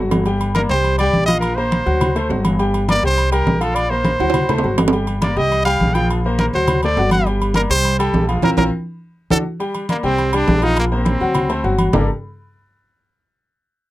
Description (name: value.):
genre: latin, salsa.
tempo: 206 BPM.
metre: 4/4.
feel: straight.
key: G minor.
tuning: A4 = 444 Hz.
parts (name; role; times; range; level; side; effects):
bright upright piano; accompaniment; 0.0-12.1 s; F3 to G5; -21 LUFS; left 2 dB; none.
upright bass; bass; 0.0-12.1 s; G1 to D2; -20 LUFS; equal; none.
congas; percussion; 0.1-12.0 s; none; -22 LUFS; equal; none.
timbales and agogo bells; percussion; 0.1-12.0 s; none; -24 LUFS; right 3 dB; none.
warm trumpet; melody; 0.5-12.1 s; Bb3 to G5; -20 LUFS; right 1 dB; none.
room: light reverb.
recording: none.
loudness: -15 LUFS.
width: side -16 dB against mid.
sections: 0.3-9.6 A section; 9.6-11.9 B section; 11.9-13.1 C section.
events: drum fill 0.0, 4.2-4.9; band accent 8.4-9.6.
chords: 0.3 Gm; 0.8 C5; 1.4 Bbsus2; 2.0 D7; 2.6 Gm; 3.2 C5; 3.8 Bbsus2; 4.3 D7; 4.9 Gm; 5.5 C5; 6.1 Bbsus2; 6.7 D7; 7.3 Gm; 7.8 C5; 8.4 Bbsus2; 9.0 D; 9.6 Gm; 10.2 C5; 10.8 Bbsus2; 11.3 D7; 11.9 Gmadd9.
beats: | 0.26 0.55 0.84 1.14 | 1.43 1.72 2.01 2.30 | 2.59 2.89 3.18 3.47 | 3.76 4.05 4.35 4.64 | 4.93 5.22 5.51 5.81 | 6.10 6.39 6.68 6.97 | 7.27 7.56 7.85 8.14 | 8.43 8.73 9.02 9.31 | 9.60 9.89 10.18 10.48 | 10.77 11.06 11.35 11.64 | 11.93.